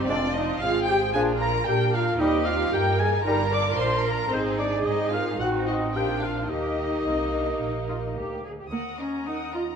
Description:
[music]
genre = quick classical-period movement for symphony orchestra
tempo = 111 BPM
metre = 4/4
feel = straight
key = Eb major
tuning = A4 = 440 Hz
[part]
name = muted chamber violin section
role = melody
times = 0.0-9.8 s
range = C5 to Eb6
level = -30 LUFS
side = left 2 dB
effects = none
[part]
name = muted chamber violin section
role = second line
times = 0.0-9.8 s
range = Bb3 to Gb5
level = -35 LUFS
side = equal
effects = none
[part]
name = muted chamber viola section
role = accompaniment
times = 0.0-9.6 s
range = Bb3 to D5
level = -31 LUFS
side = right 2 dB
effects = none
[part]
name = mellow French horn section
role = sustained chords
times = 0.0-8.1 s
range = C4 to D5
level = -30 LUFS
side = left 4 dB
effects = none
[part]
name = muted chamber cello section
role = bass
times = 0.0-9.8 s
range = Eb2 to Bb4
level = -32 LUFS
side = right 3 dB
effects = none
[part]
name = muted chamber double bass section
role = bass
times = 0.0-8.7 s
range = F1 to Bb2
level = -30 LUFS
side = right 3 dB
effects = none
[part]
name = clear clarinet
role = second line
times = 0.1-8.4 s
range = C4 to G4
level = -32 LUFS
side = right 1 dB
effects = none
[part]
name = warm oboe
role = second line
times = 0.1-8.2 s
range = C5 to D6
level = -32 LUFS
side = right 1 dB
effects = none
[part]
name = warm bassoon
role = accompaniment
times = 0.1-8.4 s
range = F3 to C4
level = -33 LUFS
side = right 1 dB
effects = none
[sound]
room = moderate scoring stage reverb, RT60 1.7 s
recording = none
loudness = -22 LUFS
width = side -7 dB against mid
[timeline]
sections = 0.0-8.7 A section; 8.7-9.8 B section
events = none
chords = 0.1 Fm; 1.1 Bb; 2.2 Eb; 3.3 Eb/G (rootless); 4.3 Ab; 5.4 Adim7; 6.0 Bb; 6.5 Eb; 8.7 Ebm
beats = | 0.09 0.62 1.14 1.67 | 2.20 2.73 3.26 3.79 | 4.32 4.86 5.40 5.95 | 6.50 7.06 7.61 8.16 | 8.72 9.27

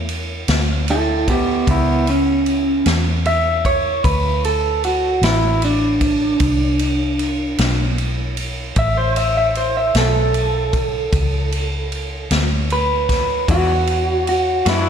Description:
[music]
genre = slow blues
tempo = 51 BPM (dotted quarters)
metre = 12/8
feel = straight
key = A major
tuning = A4 = 440 Hz
[part]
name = electric guitar through a small old amp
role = melody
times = 0.0-14.9 s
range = B3 to E5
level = -18 LUFS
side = right 1 dB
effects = slapback echo
[part]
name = vintage muted fingered electric bass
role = bass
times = 0.0-14.9 s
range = A1 to F#2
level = -20 LUFS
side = equal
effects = none
[part]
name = vintage drum kit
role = drums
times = 0.1-14.8 s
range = kick drum, ride cymbal, snare drum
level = -22 LUFS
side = equal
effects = none
[part]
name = electric guitar through a small old amp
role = accompaniment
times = 13.5-14.9 s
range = E3 to F#4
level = -26 LUFS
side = left 6 dB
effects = harmonic tremolo, slapback echo
[sound]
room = moderate lush hall reverb, RT60 2.6 s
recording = big arena sound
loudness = -15 LUFS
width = side -8 dB against mid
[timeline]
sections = 0.0-14.9 A section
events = clean electric guitar solo 0.0-14.9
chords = 0.0 A (rootless); 4.0 D5; 8.8 Aadd9; 13.5 E9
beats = 0.49 1.67 2.86 | 4.04 5.22 6.40 7.58 | 8.77 9.95 11.12 12.30 | 13.48 14.66

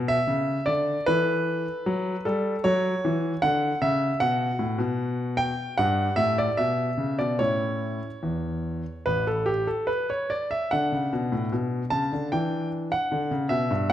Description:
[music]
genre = classical-period piano sonatina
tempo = 75 BPM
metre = 4/4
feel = uneven beats, rubato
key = unclear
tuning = A4 = 440 Hz
[part]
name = clear grand piano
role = solo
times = 0.0-13.9 s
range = A1 to A5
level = -23 LUFS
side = equal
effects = none
[sound]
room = moderate recital hall reverb, RT60 1.5 s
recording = none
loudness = -23 LUFS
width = side -11 dB against mid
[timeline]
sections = 0.0-13.9 A section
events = none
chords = 0.0 D5; 1.1 A5/E; 2.7 F#5; 4.2 B5; 5.8 Gmaj13; 7.4 A; 10.7 Bm; 12.3 Em7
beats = 0.29 | 1.08 1.86 2.65 3.43 | 4.21 4.99 5.79 6.59 | 7.41 8.24 9.06 9.89 | 10.71 11.53 12.33 13.12 | 13.91

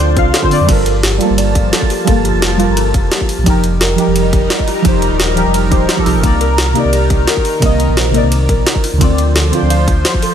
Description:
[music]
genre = liquid drum and bass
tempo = 173 BPM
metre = 4/4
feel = straight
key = G minor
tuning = A4 = 440 Hz
[part]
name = deep mellow chord stab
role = accompaniment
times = 0.0-10.3 s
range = C3 to F5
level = -16 LUFS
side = right 1 dB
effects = chorus, phaser, tape echo
[part]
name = lush unison pad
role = sustained chords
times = 0.0-10.3 s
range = Eb3 to A5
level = -19 LUFS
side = right 1 dB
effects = chorus, phaser
[part]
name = buzzing kalimba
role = arpeggios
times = 0.0-10.3 s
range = F4 to F5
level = -22 LUFS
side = left 2 dB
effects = tape echo
[part]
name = sub bass with octave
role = bass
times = 0.0-10.0 s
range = Eb1 to F2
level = -15 LUFS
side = equal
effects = none
[part]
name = electronic kick drum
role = drums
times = 0.2-10.2 s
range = none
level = -15 LUFS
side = equal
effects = none
[part]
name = jungle sampler-style drum kit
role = drums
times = 0.2-10.3 s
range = crash cymbal, hi-hat, ride cymbal, snare drum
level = -18 LUFS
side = equal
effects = none
[sound]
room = light reverb, digital ambience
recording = none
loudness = -10 LUFS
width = side -9 dB against mid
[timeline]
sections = 0.0-10.3 A section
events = none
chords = 0.0 Dm7; 0.7 Gm9; 3.5 F9sus4; 6.2 Cm9; 8.8 Dm7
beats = 0.34 | 0.69 1.03 1.38 1.73 | 2.08 2.42 2.77 3.12 | 3.46 3.81 4.16 4.50 | 4.85 5.20 5.54 5.89 | 6.24 6.58 6.93 7.28 | 7.62 7.97 8.32 8.66 | 9.01 9.36 9.71 10.05

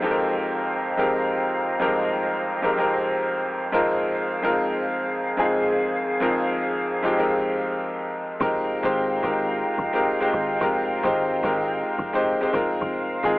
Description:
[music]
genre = amapiano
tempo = 109 BPM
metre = 4/4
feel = swing 55% on 16ths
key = F minor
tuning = A4 = 441 Hz
[part]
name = clear baby grand piano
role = accompaniment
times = 0.0-13.4 s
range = F2 to C5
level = -22 LUFS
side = equal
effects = none
[part]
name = small flute group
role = sustained chords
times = 0.0-13.4 s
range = F4 to Bb5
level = -27 LUFS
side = equal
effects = none
[part]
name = deep log drum bass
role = bass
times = 8.4-13.4 s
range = F1 to Ab1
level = -33 LUFS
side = equal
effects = none
[sound]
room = moderate spring reverb, RT60 1.5 s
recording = telephone sound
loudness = -21 LUFS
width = side -20 dB against mid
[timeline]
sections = 0.0-8.4 A section; 8.4-13.4 B section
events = drop 8.4-13.4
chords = 0.0 Fm11; 12.5 Ab69/F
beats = 0.15 0.70 1.25 | 1.80 2.35 2.90 3.45 | 4.00 4.55 5.11 5.66 | 6.21 6.76 7.31 7.86 | 8.41 8.96 9.51 10.06 | 10.61 11.16 11.71 12.26 | 12.81 13.36

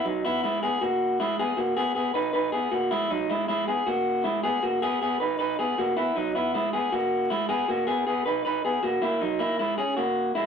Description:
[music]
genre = indie pop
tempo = 157 BPM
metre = 4/4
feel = straight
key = B major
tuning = A4 = 441 Hz
[part]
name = electric guitar through a small old amp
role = solo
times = 0.0-10.5 s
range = F#3 to B4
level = -24 LUFS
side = equal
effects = none
[sound]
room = wet studio reverb, RT60 0.6 s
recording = vinyl crackle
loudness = -24 LUFS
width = side -7 dB against mid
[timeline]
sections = 0.0-10.5 A section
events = none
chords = 0.0 F#7sus4; 1.4 B6; 2.9 E; 4.4 B6; 6.0 F#7sus4; 7.5 B6; 9.0 F#7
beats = 0.23 0.61 1.00 | 1.38 1.76 2.15 2.53 | 2.91 3.29 3.68 4.06 | 4.44 4.82 5.20 5.58 | 5.97 6.35 6.73 7.11 | 7.49 7.87 8.26 8.64 | 9.02 9.40 9.78 10.16

